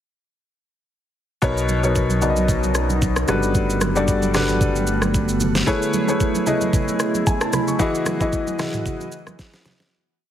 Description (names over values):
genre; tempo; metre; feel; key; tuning
amapiano; 113 BPM; 4/4; swing 55% on 16ths; B major; A4 = 440 Hz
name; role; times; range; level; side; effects
warm baby grand piano; accompaniment; 1.4-9.9 s; B2 to C#6; -21 LUFS; left 2 dB; none
glassy FM pad; sustained chords; 2.1-9.9 s; C#3 to D#5; -25 LUFS; right 1 dB; ensemble chorus, built-in reverb, sidechain pumping
sub bass with octave; bass; 1.4-5.6 s; G1 to B1; -24 LUFS; equal; none
smooth R&B drum kit; drums; 1.4-9.9 s; kick drum, rim click, shaker, snare drum, toms; -23 LUFS; equal; none
congas; percussion; 1.7-9.8 s; none; -28 LUFS; right 4 dB; none
room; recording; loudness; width
light reverb, digital ambience; heavily compressed radio sound; -18 LUFS; side -10 dB against mid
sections
1.4-9.9 groove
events
fade-out 7.8-9.9; drum fill 9.4-9.9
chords
1.4 Bmaj9; 3.3 Gmaj9; 5.7 Amaj9; 7.8 Emaj9